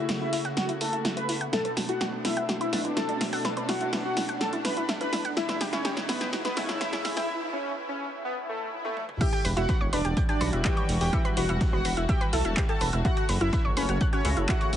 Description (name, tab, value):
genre	melodic techno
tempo	125 BPM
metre	4/4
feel	straight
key	E dorian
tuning	A4 = 444 Hz
part	wide unison lead	melody	0.0-14.7 s	A3 to B4	-32 LUFS	left 1 dB	wide subtle chorus, sidechain pumping, ping-pong delay
part	soft supersaw	second line	0.0-14.7 s	B4 to B5	-36 LUFS	right 1 dB	cassette tape, sidechain pumping, low-pass filter, dub echo
part	dark studio string section	sustained chords	0.0-14.8 s	B2 to F#4	-37 LUFS	left 1 dB	sidechain pumping, low-pass filter
part	analog pluck	arpeggios	0.0-14.7 s	B3 to G6	-34 LUFS	equal	chorus, cassette tape, sidechain pumping, dub echo
part	sync-sweep polysynth	stabs	0.0-7.3, 10.4-14.8 s	B2 to F#4	-37 LUFS	left 1 dB	chorus, sidechain pumping, dub echo
part	riser and swell	sound effects	0.4-9.2 s	none	-38 LUFS	right 2 dB	none
part	dusty soul sampler-style drum kit	drums	0.1-14.8 s	hi-hat, snare drum, tambourine	-44 LUFS	left 1 dB	none
part	punchy analog drum machine	drums	0.1-14.8 s	crash cymbal, handclaps, hi-hat, snare drum, toms	-32 LUFS	equal	none
part	electronic kick drum	drums	9.2-14.6 s	none	-26 LUFS	equal	none
part	dark detuned saw bass	bass	9.4-14.8 s	E1 to C#2	-28 LUFS	equal	sidechain pumping
room	light reverb, digital ambience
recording	heavily compressed radio sound, multiband compression, high-pass filter, nothing above 10.5 kHz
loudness	-25 LUFS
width	side -10 dB against mid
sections	0.0-9.2 A section; 9.2-14.8 B section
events	build-up 0.0-9.2; drum fill 0.0-7.3, 8.8-9.2; filter sweep on synth arpeggio sound 0.0-9.2; filter sweep on analog synth lead 0.0-9.2; filter sweep on supersaw synth 0.0-9.2; filter sweep on analog polysynth 0.0-9.2; filter sweep on string section 0.0-9.2; riser 0.4-7.3; break 7.3-9.2; swell 8.2-9.2; drop 9.2-14.8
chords	0.0 F#m; 1.5 Bm7; 5.4 A; 9.2 Emadd9; 13.0 F#m